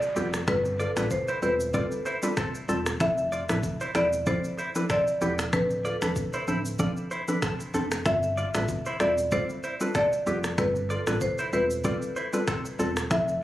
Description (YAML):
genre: afrobeats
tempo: 95 BPM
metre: 4/4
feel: swing 55% on 16ths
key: G mixolydian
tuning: A4 = 440 Hz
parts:
  - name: marimba with medium mallets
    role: melody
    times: 0.0-13.4 s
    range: A4 to E5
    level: -28 LUFS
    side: equal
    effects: digital delay
  - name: mallet-like synth pluck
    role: accompaniment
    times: 0.0-13.4 s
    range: F3 to A4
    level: -30 LUFS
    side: equal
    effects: chorus
  - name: afro-pop drum kit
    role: drums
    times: 0.0-13.4 s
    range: finger snaps, kick drum, rim click, shaker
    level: -32 LUFS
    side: equal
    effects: none
  - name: downlifter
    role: sound effects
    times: 0.0-3.0 s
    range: none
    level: -44 LUFS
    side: equal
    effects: none
  - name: direct-recorded clean electric guitar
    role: riff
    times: 0.2-12.9 s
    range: B3 to D5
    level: -33 LUFS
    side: right 1 dB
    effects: lush chorus, digital delay
  - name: sub bass with octave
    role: bass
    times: 0.2-13.4 s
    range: D1 to A1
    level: -34 LUFS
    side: equal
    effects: none
room: light reverb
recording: recorded on a phone in the room, club reverb, compression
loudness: -24 LUFS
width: side -14 dB against mid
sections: 0.0-13.4 A section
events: none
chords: 0.0 G9sus4; 5.5 Dm7; 8.1 G9sus4